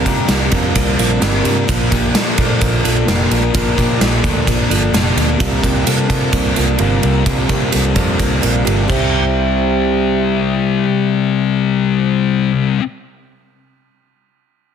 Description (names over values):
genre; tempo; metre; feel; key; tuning
rock, shoegaze and dream pop; 129 BPM; 4/4; straight; C mixolydian; A4 = 443 Hz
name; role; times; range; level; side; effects
picked twelve-string acoustic guitar; arpeggios; 0.0-9.9 s; G4 to C5; -26 LUFS; left 11 dB; lush chorus, digital delay
electric guitar through a small old amp; riff; 0.0-12.8 s; Bb2 to E4; -20 LUFS; right 10 dB; reverse reverb
thick fuzz guitar; riff; 0.0-12.8 s; Bb2 to C4; -18 LUFS; left 9 dB; distortion, wide subtle chorus
vintage muted picked electric bass; bass; 0.1-12.7 s; F1 to C3; -19 LUFS; right 1 dB; none
gated 80s drum kit; drums; 0.1-9.0 s; crash cymbal, kick drum, ride cymbal, snare drum; -18 LUFS; right 1 dB; soft clipping on kick
room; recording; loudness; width
small room reverb; dense, heavily limited modern master; -13 LUFS; side -7 dB against mid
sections
0.0-9.1 A section; 9.1-12.9 B section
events
drum fill 8.9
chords
0.0 C9sus4; 1.7 Bbmaj7; 5.4 C9sus4; 8.9 C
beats
0.29 0.75 1.22 | 1.68 2.15 2.61 3.07 | 3.54 4.00 4.47 4.93 | 5.40 5.86 6.33 6.79 | 7.26 7.73 8.19 8.66 | 9.12 9.59 10.06 10.52 | 10.99 11.46 11.93 12.39